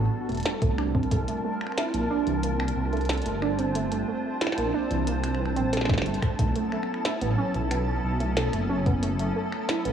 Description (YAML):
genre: IDM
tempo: 91 BPM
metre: 4/4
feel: straight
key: unclear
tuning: A4 = 440 Hz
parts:
  - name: hollow soft pad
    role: sustained chords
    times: 0.0-9.9 s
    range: F#3 to C5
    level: -32 LUFS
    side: right 1 dB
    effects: ensemble chorus
  - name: dark detuned saw bass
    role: bass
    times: 0.0-9.9 s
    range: E1 to C2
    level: -28 LUFS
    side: equal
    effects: tube saturation
  - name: flickering grainy texture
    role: texture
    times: 0.0-9.9 s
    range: A5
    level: -36 LUFS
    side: left 2 dB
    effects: built-in reverb, sidechain pumping
  - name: warbly dusty pluck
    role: arpeggios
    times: 0.3-9.9 s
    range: E3 to A4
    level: -30 LUFS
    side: right 3 dB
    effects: chorus, dub echo
  - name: glitchy drum kit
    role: drums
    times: 0.3-9.9 s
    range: finger snaps, hi-hat, snare drum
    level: -32 LUFS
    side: equal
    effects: none
  - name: electronic kick drum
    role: drums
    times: 0.6-1.2, 5.9-9.0 s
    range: none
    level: -26 LUFS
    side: equal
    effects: none
room: light reverb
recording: worn, warbling old tape, cassette tape, warbly pitch drift, small room reverb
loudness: -24 LUFS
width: side -8 dB against mid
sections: 0.0-9.9 A section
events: none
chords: 0.0 A9sus4; 0.8 C9sus4; 6.4 B9sus4